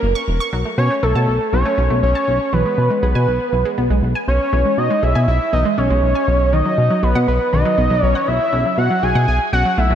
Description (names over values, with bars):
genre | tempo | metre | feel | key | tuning
synth-pop | 120 BPM | 4/4 | straight | unclear | A4 = 440 Hz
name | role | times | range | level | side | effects
fat analog lead | melody | 0.0-9.9 s | A4 to G#5 | -18 LUFS | equal | tape echo
chorused synth bass | bass | 0.0-9.9 s | E1 to B2 | -17 LUFS | equal | none
analog pluck | arpeggios | 0.2-9.9 s | C#3 to C#6 | -23 LUFS | equal | chorus, tape echo
room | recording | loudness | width
wet lush hall reverb, RT60 3.2 s | dreamy mix soaked in reverb | -14 LUFS | side -9 dB against mid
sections
0.5-9.9 A section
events
none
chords
0.0 F#; 0.5 F#m/B; 2.5 E/B; 4.5 C#m/B; 6.3 B; 8.5 F#m/B